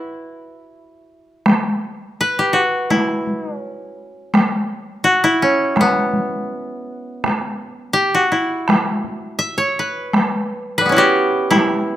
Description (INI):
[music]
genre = japanese traditional, Japanese chamber music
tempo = 84 BPM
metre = 2/4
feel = rubato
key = E kumoi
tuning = A4 = 440 Hz
[part]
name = koto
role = melody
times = 0.0-12.0 s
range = G3 to E5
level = -17 LUFS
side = equal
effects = none
[part]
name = taiko ensemble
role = percussion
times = 1.5-11.7 s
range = none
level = -18 LUFS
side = equal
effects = none
[sound]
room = light reverb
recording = close, detailed microphones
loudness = -15 LUFS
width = side -12 dB against mid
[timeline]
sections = 0.0-1.4 A section; 1.4-12.0 B section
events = none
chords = none